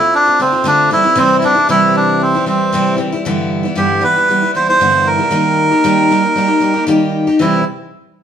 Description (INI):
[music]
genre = rock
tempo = 115 BPM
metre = 4/4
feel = straight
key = C major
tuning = A4 = 440 Hz
[part]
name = melodica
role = melody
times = 0.0-7.6 s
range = C4 to C5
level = -12 LUFS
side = right 2 dB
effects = none
[part]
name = picked steel-string acoustic guitar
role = accompaniment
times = 0.0-7.6 s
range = G2 to G4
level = -15 LUFS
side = left 1 dB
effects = none
[sound]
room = moderate large studio reverb, RT60 1.0 s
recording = band playing live in one room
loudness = -11 LUFS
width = side -8 dB against mid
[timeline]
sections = 0.0-3.2 A section; 3.2-7.4 B section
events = none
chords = 0.0 Dm7; 0.9 C; 3.2 G6; 5.3 Eb; 7.4 C